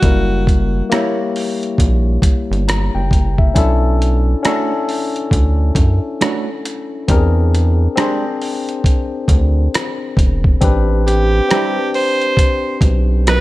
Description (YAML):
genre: R&B, neo-soul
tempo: 68 BPM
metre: 4/4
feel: swing 61% on 16ths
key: unclear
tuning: A4 = 441 Hz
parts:
  - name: edgy alto saxophone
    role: melody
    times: 0.0-0.9, 11.1-13.4 s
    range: F#4 to C5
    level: -18 LUFS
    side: right 2 dB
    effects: slapback echo
  - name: barky tine electric piano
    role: accompaniment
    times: 0.0-13.4 s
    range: G3 to A#5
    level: -20 LUFS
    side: left 4 dB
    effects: overdrive
  - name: rubbery square bass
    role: bass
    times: 0.0-13.4 s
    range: E1 to F#2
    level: -15 LUFS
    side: equal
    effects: none
  - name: dusty soul sampler-style drum kit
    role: drums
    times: 0.0-13.4 s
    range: hi-hat, kick drum, rim click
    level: -16 LUFS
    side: equal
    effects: none
  - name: vintage hollow-body jazz guitar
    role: second line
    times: 0.9-13.4 s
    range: G3 to C#5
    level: -22 LUFS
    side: right 6 dB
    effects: none
room: little or no reverb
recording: none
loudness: -13 LUFS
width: side -17 dB against mid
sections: 0.0-13.4 A section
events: none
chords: 0.0 F#7b9; 3.6 Bm9; 7.1 E7b13; 10.6 Am9